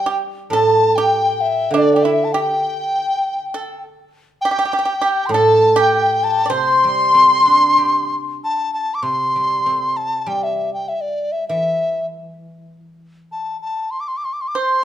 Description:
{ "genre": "chinese traditional, Chinese chamber ensemble", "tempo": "99 BPM", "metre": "4/4", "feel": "rubato", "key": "C gong mode", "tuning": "A4 = 440 Hz", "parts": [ { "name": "mellow hollow large dizi", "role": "melody", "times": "0.0-14.8 s", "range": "D5 to D6", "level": "-18 LUFS", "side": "equal", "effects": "none" }, { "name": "mellow hollow large dizi", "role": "second line", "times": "0.0-8.4 s", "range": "D5 to C6", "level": "-20 LUFS", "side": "left 7 dB", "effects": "none" }, { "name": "pipa", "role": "second line", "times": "0.0-8.3, 14.6-14.8 s", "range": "D4 to D5", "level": "-22 LUFS", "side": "right 5 dB", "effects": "none" }, { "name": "guzheng", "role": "accompaniment", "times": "0.0-13.3 s", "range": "A2 to G4", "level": "-20 LUFS", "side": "right 3 dB", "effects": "none" } ], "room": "moderate recital hall reverb, RT60 1.3 s", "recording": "dark, warm production", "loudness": "-15 LUFS", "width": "side -11 dB against mid", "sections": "0.0-9.0 A section; 9.0-14.8 B section", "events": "none", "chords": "none" }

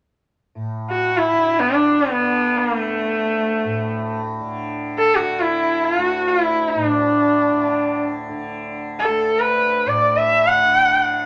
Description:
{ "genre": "indian classical", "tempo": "free time", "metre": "none", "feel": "none", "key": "D raga bhupali", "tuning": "A4 = 441 Hz", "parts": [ { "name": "tanpura", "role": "drone", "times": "0.6-11.3 s", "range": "D2 to D3", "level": "-30 LUFS", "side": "equal", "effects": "none" }, { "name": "rich sarangi", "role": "melody", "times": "0.9-11.3 s", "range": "A3 to F#5-20c", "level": "-19 LUFS", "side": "equal", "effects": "none" } ], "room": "moderate studio reverb, RT60 0.6 s", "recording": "none", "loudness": "-19 LUFS", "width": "mono", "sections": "0.5-11.3 A section", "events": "none", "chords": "none" }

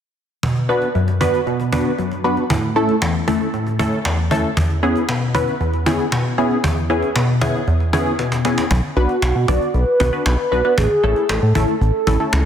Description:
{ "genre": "synth-pop", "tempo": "116 BPM", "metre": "4/4", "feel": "straight", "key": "unclear", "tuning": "A4 = 439 Hz", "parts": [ { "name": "funky polysynth comp", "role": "accompaniment", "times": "0.4-12.4 s", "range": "E2 to D5", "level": "-18 LUFS", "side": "equal", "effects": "chorus, phaser" }, { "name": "cajon", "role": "drums", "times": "0.4-12.4 s", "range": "none", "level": "-24 LUFS", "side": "equal", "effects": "none" }, { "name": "chorused synth bass", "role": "bass", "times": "8.7-12.4 s", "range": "A1 to B2", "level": "-17 LUFS", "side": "equal", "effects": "none" }, { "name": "warm velvety synth lead", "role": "melody", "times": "9.0-12.5 s", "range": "F#4 to B4", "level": "-20 LUFS", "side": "right 1 dB", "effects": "chorus, digital delay" } ], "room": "moderate scoring stage reverb, RT60 1.7 s", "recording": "dense, heavily limited modern master", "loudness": "-16 LUFS", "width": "side -9 dB against mid", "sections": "0.4-8.7 A section; 8.7-12.5 B section", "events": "drum fill 8.2-8.7", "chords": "0.4 Bm; 2.5 A; 4.6 E6; 8.7 Bm; 10.8 A" }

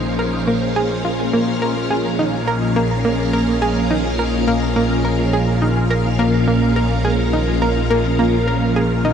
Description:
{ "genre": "ambient, sequencer-driven space music", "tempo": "105 BPM", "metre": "4/4", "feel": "straight", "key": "Bb minor", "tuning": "A4 = 440 Hz", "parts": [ { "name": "phased string machine", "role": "sustained chords", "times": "0.0-9.1 s", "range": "Bb2 to F5", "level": "-18 LUFS", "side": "equal", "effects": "ensemble chorus, phaser" }, { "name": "analog pluck", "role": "riff", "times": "0.0-9.1 s", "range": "Bb3 to Bb4", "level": "-20 LUFS", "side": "right 1 dB", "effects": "chorus, tape echo" }, { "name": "fat analog bass", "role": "bass", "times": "0.0-9.1 s", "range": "Bb1", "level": "-24 LUFS", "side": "equal", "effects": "none" }, { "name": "bubbling stepped-filter texture", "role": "texture", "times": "0.0-9.1 s", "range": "Ab3 to C5", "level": "-30 LUFS", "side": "left 1 dB", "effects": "chorus, built-in reverb" } ], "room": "wet huge ambient reverb, RT60 7.7 s", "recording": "dark, warm production", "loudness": "-15 LUFS", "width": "side -8 dB against mid", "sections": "0.0-9.1 A section", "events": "none", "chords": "0.0 Bbm" }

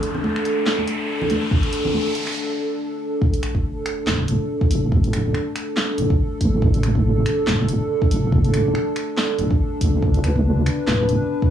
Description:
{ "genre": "deep dubstep", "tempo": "141 BPM", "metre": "4/4", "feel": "swing 56% on 16ths, half-time", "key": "unclear", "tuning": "A4 = 439 Hz", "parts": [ { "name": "dark analog pad", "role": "sustained chords", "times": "0.0-11.5 s", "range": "D4 to B4", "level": "-23 LUFS", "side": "equal", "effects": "chorus, cassette tape" }, { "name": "deep house drum kit", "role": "drums", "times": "0.0-11.2 s", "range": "finger snaps, handclaps, hi-hat, snare drum", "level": "-26 LUFS", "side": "equal", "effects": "cassette tape" }, { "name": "riser and sub drop", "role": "sound effects", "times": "0.0-4.9 s", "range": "none", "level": "-28 LUFS", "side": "equal", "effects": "none" }, { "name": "congas", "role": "percussion", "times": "0.1-2.0 s", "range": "none", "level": "-27 LUFS", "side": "right 1 dB", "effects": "dub echo" }, { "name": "electronic kick drum", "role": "drums", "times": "1.5-11.5 s", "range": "none", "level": "-20 LUFS", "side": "equal", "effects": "cassette tape" }, { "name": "deep soft wobble bass", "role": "bass", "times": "4.1-11.2 s", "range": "D1 to D2", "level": "-19 LUFS", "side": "equal", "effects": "chorus" } ], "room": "light reverb", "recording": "home recording on cassette, studio reverb", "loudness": "-18 LUFS", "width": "side -10 dB against mid", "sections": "0.0-3.2 A section; 3.2-11.5 B section", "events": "build-up 0.0-3.2; riser 0.0-2.4; break 2.4-3.2; drop 3.2-11.5; impact 3.2-4.9", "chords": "0.0 D5" }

